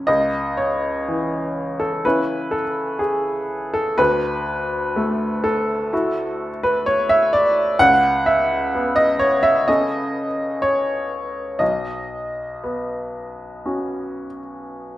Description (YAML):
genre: neoclassical minimalist piano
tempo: 62 BPM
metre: 4/4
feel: uneven beats, rubato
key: C# minor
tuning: A4 = 440 Hz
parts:
  - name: clear upright piano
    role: solo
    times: 0.0-15.0 s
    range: B1 to F#5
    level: -18 LUFS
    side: equal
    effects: slapback echo
room: moderate studio reverb, RT60 0.6 s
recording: rough home demo mix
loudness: -18 LUFS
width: side -14 dB against mid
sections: 0.1-15.0 A section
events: none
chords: 0.1 C#m; 4.0 Dadd9; 7.8 Aadd9/C#; 11.6 Badd9